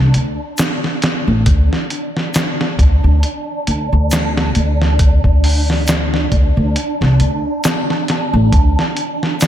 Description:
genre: trip hop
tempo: 68 BPM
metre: 4/4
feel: swing 56% on 16ths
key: unclear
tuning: A4 = 440 Hz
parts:
  - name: upright bass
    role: bass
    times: 0.0-8.7 s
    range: A1 to D2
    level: -13 LUFS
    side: equal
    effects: tube saturation
  - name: wind-like tuned noise texture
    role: texture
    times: 0.0-9.5 s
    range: D4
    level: -22 LUFS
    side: right 1 dB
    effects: built-in reverb, ensemble chorus
  - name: dusty soul sampler-style drum kit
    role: drums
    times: 0.1-9.5 s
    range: hi-hat, kick drum, snare drum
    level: -16 LUFS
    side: equal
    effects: none
  - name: egg shaker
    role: percussion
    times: 0.6-9.5 s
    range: none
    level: -31 LUFS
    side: left 1 dB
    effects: none
room: light reverb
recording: none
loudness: -13 LUFS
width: side -11 dB against mid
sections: 0.0-9.5 A section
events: none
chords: none

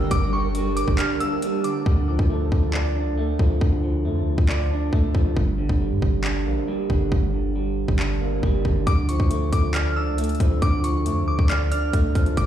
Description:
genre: hip hop, trap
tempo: 137 BPM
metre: 4/4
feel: half-time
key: D harmonic minor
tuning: A4 = 440 Hz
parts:
  - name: glassy synth bell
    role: melody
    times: 0.0-1.8, 8.9-12.5 s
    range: C#6 to F6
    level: -29 LUFS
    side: left 2 dB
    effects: chorus, tremolo, ping-pong delay
  - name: electric guitar through a small old amp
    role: accompaniment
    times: 0.0-12.5 s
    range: G2 to D5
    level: -25 LUFS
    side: right 2 dB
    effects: none
  - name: granular cloud pad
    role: sustained chords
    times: 0.0-1.8 s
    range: G3 to A5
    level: -33 LUFS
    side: left 1 dB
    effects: built-in reverb
  - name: warm 808-style bass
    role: bass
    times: 0.0-12.5 s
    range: G1 to G2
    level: -24 LUFS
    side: equal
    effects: none
  - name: trap drum kit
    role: drums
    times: 0.1-12.5 s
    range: handclaps, hi-hat, kick drum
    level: -23 LUFS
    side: equal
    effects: overdrive
room: little or no reverb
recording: played on a big sound system in a bare room, large studio reverb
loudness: -20 LUFS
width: side -10 dB against mid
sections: 0.0-1.9 A section; 1.9-12.5 B section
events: kick muted 1.0-1.9; hi-hats muted 1.9-8.9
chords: 0.0 Gm; 1.9 Dm; 5.4 Gm; 8.9 Dm

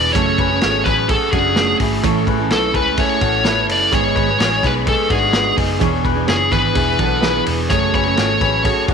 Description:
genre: jangly indie pop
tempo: 127 BPM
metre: 4/4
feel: straight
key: F# minor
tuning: A4 = 440 Hz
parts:
  - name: smooth overdriven lead guitar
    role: melody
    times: 0.0-8.8 s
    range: G#4 to D5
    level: -18 LUFS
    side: left 1 dB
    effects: slapback echo
  - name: picked steel-string acoustic guitar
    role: accompaniment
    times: 0.0-8.9 s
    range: G#2 to A4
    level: -23 LUFS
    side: right 13 dB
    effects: none
  - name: reed electric piano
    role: accompaniment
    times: 0.0-8.9 s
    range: G#3 to B4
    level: -26 LUFS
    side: right 12 dB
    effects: spring reverb
  - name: electric guitar through a small old amp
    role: arpeggios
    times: 0.0-8.9 s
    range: D4 to C#5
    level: -22 LUFS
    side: left 14 dB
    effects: slapback echo
  - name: vintage muted picked electric bass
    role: bass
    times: 0.0-8.9 s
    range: E1 to C#2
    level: -23 LUFS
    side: left 1 dB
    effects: none
  - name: vintage drum kit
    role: drums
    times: 0.1-8.9 s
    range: hi-hat, kick drum, ride cymbal, snare drum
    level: -21 LUFS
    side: equal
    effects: none
room: light reverb, small room reverb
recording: 1960s-style stereo with parts hard left and right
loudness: -14 LUFS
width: side -6 dB against mid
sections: 0.0-8.9 A section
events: none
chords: 0.1 F#madd9; 2.0 A; 3.9 G#m; 5.8 E7; 7.7 F#madd9

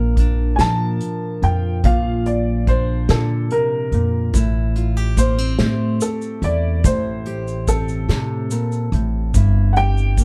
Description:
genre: acoustic folk duo or small band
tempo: 48 BPM (dotted quarters)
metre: 6/8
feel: straight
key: unclear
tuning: A4 = 439 Hz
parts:
  - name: fingerpicked steel-string acoustic guitar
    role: accompaniment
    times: 0.0-10.2 s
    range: G2 to Bb4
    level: -25 LUFS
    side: equal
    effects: none
  - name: upright bass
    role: bass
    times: 0.0-10.2 s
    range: G1 to Bb2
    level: -21 LUFS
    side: equal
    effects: none
  - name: unplugged drum kit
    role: drums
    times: 0.2-10.2 s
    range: hi-hat, kick drum, snare drum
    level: -23 LUFS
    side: equal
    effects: none
  - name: warm upright piano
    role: melody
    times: 0.6-10.2 s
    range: A4 to A5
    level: -26 LUFS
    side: equal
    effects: none
  - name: tube shaker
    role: percussion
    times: 4.3-10.2 s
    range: none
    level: -35 LUFS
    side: equal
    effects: none
room: little or no reverb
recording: dark, warm production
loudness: -19 LUFS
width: mono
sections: 0.0-10.2 A section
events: upright piano solo 0.0-10.2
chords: 0.0 Bb; 4.3 Am7; 9.3 C/G

